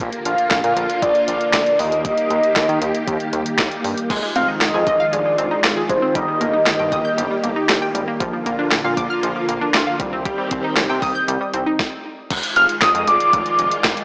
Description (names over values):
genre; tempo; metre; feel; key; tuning
synth-pop; 117 BPM; 4/4; straight; unclear; A4 = 442 Hz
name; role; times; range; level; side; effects
string machine, cellos; sustained chords; 0.0-14.0 s; D3 to G4; -24 LUFS; equal; phaser, ensemble chorus
chorused synth bass; bass; 0.0-13.9 s; F1 to Eb3; -24 LUFS; equal; none
clean 12-bit digital drum machine; drums; 0.0-14.0 s; crash cymbal, handclaps, hi-hat, kick drum, snare drum; -20 LUFS; equal; overdrive
warm velvety synth lead; melody; 0.3-7.9, 12.6-13.8 s; C5 to F6; -17 LUFS; equal; chorus, tremolo
analog pluck; arpeggios; 4.1-11.8 s; F3 to G6; -23 LUFS; equal; chorus, digital delay
room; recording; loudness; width
moderate plate reverb, RT60 2.1 s; blown-out, overdriven recording, overdrive, small speaker sound; -16 LUFS; side -40 dB against mid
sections
0.0-4.1 A section; 4.1-12.3 B section; 12.3-14.0 A section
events
stop 11.8-12.3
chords
0.0 Bb; 1.8 Eb; 4.1 Fm7; 6.2 Eb/G; 8.2 Bb; 10.0 Cm; 12.3 Fm7